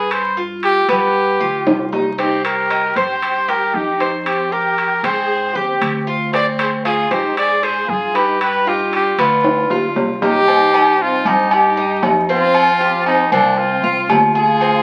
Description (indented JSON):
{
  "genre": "latin, Cuban son and guajira",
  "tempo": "116 BPM",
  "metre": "4/4",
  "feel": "straight",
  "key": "C minor",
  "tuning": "A4 = 440 Hz",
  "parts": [
    { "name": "bright trumpet", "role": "melody", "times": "0.0-14.8 s", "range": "D4 to D5", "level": "-20 LUFS", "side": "equal", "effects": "none" },
    { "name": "Cuban tres", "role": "arpeggios", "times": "0.0-14.8 s", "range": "B3 to C5", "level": "-23 LUFS", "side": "equal", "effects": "none" },
    { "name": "upright bass", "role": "bass", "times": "0.0-14.8 s", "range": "C2 to Ab2", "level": "-29 LUFS", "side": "equal", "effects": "none" },
    { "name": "timbales and agogo bells", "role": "percussion", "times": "0.1-14.8 s", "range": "none", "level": "-20 LUFS", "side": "equal", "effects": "none" },
    { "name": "warm studio violin section", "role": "second line", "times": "2.2-14.8 s", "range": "Bb3 to Ab4", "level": "-27 LUFS", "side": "equal", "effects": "none" }
  ],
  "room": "wet club reverb, RT60 0.6 s",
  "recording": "very old 78 rpm record, vinyl crackle",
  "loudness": "-16 LUFS",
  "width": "mono",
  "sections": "0.0-10.5 A section; 10.5-14.8 B section",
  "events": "drum fill 1.7-2.2, 9.4-10.5",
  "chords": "0.1 G7; 2.2 Cm7; 4.3 Fmadd9; 6.3 Dm7b5; 8.4 G7; 10.5 Cm; 12.5 Fmadd9"
}